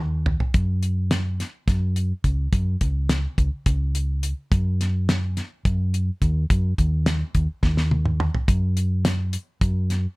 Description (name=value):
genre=progressive instrumental, band music in an uneven meter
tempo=212 BPM (eighths)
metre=7/8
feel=straight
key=unclear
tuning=A4 = 439 Hz
part: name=hollow-body short-scale fingered electric bass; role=bass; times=0.0-10.1 s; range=C#2 to F#2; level=-22 LUFS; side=equal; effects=none
part: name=damped 70s drum kit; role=drums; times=0.3-10.0 s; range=hi-hat, kick drum, snare drum, toms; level=-22 LUFS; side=equal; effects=none
room=little or no reverb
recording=none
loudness=-20 LUFS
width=side -24 dB against mid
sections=0.0-10.2 A section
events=drum fill 0.0-0.6, 7.6-8.5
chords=none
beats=0.27 | 0.55 0.83 1.12 1.40 1.68 1.97 2.25 | 2.53 2.81 3.10 3.38 3.67 3.95 4.23 | 4.52 4.80 5.08 5.37 5.65 5.93 6.22 | 6.50 6.78 7.07 7.35 7.63 7.92 8.20 | 8.48 8.77 9.05 9.34 9.62 9.90